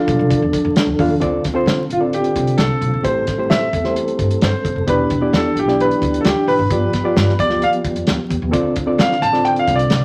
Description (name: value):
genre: uptempo 1960s-style soul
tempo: 131 BPM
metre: 4/4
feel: straight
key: D dorian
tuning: A4 = 440 Hz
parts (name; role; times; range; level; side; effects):
- clear concert grand piano; melody; 0.0-10.0 s; F4 to A5; -22 LUFS; equal; none
- barky reed electric piano; accompaniment; 0.0-9.9 s; A3 to F5; -23 LUFS; equal; overdrive
- mellow tonewheel organ; sustained chords; 0.0-10.0 s; D3 to A4; -24 LUFS; equal; slow rotary speaker, chorus vibrato
- upright bass; bass; 0.1-10.0 s; E1 to D3; -25 LUFS; equal; none
- cloth-damped thuddy drum kit; drums; 0.1-10.0 s; hi-hat, kick drum, snare drum; -22 LUFS; equal; none
room: wet studio reverb, RT60 0.8 s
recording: vinyl crackle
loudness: -17 LUFS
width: mono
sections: 0.0-1.2 A section; 1.2-10.0 B section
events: grand piano solo 1.2-10.0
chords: 0.0 Dm; 1.2 Dm7; 3.0 Am7; 4.9 Em7; 6.7 G7; 8.5 Dm7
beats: 0.31 0.76 | 1.22 1.68 2.13 2.59 | 3.05 3.50 3.96 4.42 | 4.88 5.33 5.79 6.25 | 6.71 7.16 7.62 8.08 | 8.53 8.99 9.45 9.91